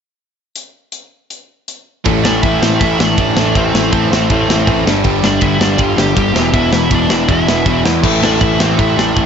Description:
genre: punk rock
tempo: 160 BPM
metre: 4/4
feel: straight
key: A minor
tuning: A4 = 440 Hz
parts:
  - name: tight metal drum kit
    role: drums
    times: 0.6-9.2 s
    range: crash cymbal, hi-hat, kick drum, ride cymbal, snare drum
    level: -16 LUFS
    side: equal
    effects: none
  - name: crunchy overdriven guitar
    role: riff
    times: 2.0-9.3 s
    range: E2 to A3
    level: -17 LUFS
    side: right 14 dB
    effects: none
  - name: overdriven electric guitar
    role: riff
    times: 2.1-9.3 s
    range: E2 to A3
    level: -17 LUFS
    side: left 13 dB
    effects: none
  - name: growling picked electric bass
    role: bass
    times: 2.1-9.3 s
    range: E1 to E2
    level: -19 LUFS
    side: right 1 dB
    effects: overdrive
  - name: smooth overdriven lead guitar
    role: melody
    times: 2.2-9.3 s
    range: C4 to G5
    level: -19 LUFS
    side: equal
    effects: none
  - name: overdriven electric guitar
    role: riff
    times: 8.0-9.3 s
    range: A2 to E4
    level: -20 LUFS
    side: equal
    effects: none
room: little or no reverb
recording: nothing above 7.8 kHz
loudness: -11 LUFS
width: side -7 dB against mid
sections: 0.6-2.0 A section; 2.0-9.3 B section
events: none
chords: 0.6 N.C.; 2.0 Am; 4.9 G5; 6.4 Em; 8.0 Am

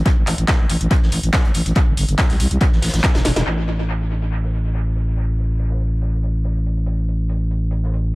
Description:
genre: driving peak-time techno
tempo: 141 BPM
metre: 4/4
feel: straight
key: A minor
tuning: A4 = 440 Hz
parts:
  - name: crunchy breakbeat drum kit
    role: drums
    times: 0.1-8.0 s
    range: hi-hat, snare drum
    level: -34 LUFS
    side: equal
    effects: sidechain pumping on hats, high-pass filter on hats, low-pass filter on hats, high-pass filter on snare, low-pass filter on snare, high-pass filter on room, low-pass filter on room, dub echo
  - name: electronic kick drum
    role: drums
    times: 0.1-3.1 s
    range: none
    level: -17 LUFS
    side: equal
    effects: none
  - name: techno drum kit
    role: drums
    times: 0.1-3.4 s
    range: handclaps, hi-hat, snare drum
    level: -24 LUFS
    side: equal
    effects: sidechain pumping on hats, dub echo
  - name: growling FM bass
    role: bass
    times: 0.2-8.2 s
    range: E1 to C2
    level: -19 LUFS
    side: equal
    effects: tube saturation, sidechain pumping
room: little or no reverb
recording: echo-heavy mix, faint mains hum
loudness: -16 LUFS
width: side -21 dB against mid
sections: 0.0-3.5 A section; 3.5-8.2 B section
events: drum fill 3.1-3.5; band accent 3.4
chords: none

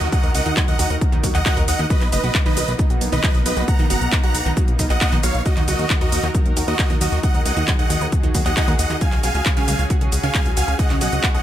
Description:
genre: uplifting trance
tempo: 135 BPM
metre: 4/4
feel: straight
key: Eb minor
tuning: A4 = 440 Hz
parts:
  - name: big supersaw lead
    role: melody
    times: 0.0-11.4 s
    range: Gb4 to A#5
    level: -24 LUFS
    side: right 1 dB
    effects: sidechain pumping, tape echo
  - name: lush unison pad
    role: sustained chords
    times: 0.0-11.4 s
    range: Db3 to Bb4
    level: -29 LUFS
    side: left 1 dB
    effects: chorus, sidechain pumping
  - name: plucky analog bass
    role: bass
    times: 0.0-11.4 s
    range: F#1 to Eb2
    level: -23 LUFS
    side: equal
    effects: sidechain pumping
  - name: techno drum kit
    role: drums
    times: 0.0-11.4 s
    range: handclaps, hi-hat, shaker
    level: -24 LUFS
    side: equal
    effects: none
  - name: downlifter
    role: sound effects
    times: 0.0-1.9 s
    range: none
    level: -38 LUFS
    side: equal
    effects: none
  - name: analog pluck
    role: arpeggios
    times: 0.1-11.4 s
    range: Db3 to Bb4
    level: -29 LUFS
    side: right 3 dB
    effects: chorus, sidechain pumping, digital delay
  - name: electronic kick drum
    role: drums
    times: 0.1-11.3 s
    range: none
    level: -19 LUFS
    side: equal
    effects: none
room: little or no reverb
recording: none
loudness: -16 LUFS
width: side -12 dB against mid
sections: 0.0-11.4 A section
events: none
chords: 0.0 Ebm; 1.9 Bmaj7; 5.5 Ebm; 9.0 Dbsus4

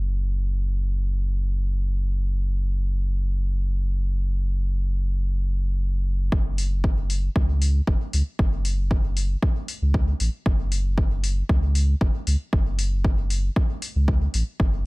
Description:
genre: dub techno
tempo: 116 BPM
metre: 4/4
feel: straight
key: unclear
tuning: A4 = 443 Hz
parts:
  - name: warm sub bass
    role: bass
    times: 0.0-14.9 s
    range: F#1 to C#2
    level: -22 LUFS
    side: equal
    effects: sidechain pumping
  - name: electronic kick drum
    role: drums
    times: 6.3-14.7 s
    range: none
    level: -22 LUFS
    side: equal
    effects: overdrive
  - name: electronic hi-hat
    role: drums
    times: 6.6-14.4 s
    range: none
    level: -32 LUFS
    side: left 3 dB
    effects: none
room: little or no reverb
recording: none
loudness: -21 LUFS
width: side -25 dB against mid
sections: 0.0-6.3 A section; 6.3-14.9 B section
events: none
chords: none

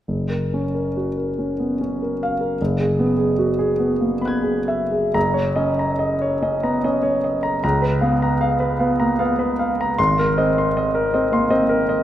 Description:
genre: classical, impressionist solo piano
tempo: 60-80 BPM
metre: 3/4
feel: rubato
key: F# major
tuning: A4 = 442 Hz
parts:
  - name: clear concert grand piano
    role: solo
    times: 0.1-12.0 s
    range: F#1 to G#6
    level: -18 LUFS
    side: equal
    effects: none
room: wet concert hall reverb, RT60 2.1 s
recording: none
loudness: -18 LUFS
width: side -12 dB against mid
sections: 0.1-5.2 A section; 5.2-12.0 B section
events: none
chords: 0.1 F#maj7; 2.6 Eadd9/F#; 5.2 F#6; 7.6 C#6; 10.0 G#add9

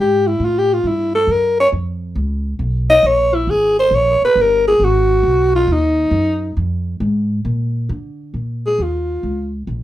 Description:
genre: jazz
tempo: 136 BPM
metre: 4/4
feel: swing 67% on 8ths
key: unclear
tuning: A4 = 443 Hz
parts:
  - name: growling alto saxophone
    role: melody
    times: 0.0-9.5 s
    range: Eb4 to Eb5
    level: -14 LUFS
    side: equal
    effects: none
  - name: upright bass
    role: bass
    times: 0.0-9.8 s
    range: G1 to D3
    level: -20 LUFS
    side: equal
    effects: none
room: moderate studio ambience, RT60 0.4 s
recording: band playing live in one room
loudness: -14 LUFS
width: side -13 dB against mid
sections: 0.0-8.3 A section; 8.3-9.8 B section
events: alto saxophone solo 0.0-8.3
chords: 0.0 Gsus2; 1.3 Gb5; 3.0 Absus2; 3.9 Gdim; 4.8 Abm7; 6.6 Fm; 7.5 Bb; 8.3 Bbm

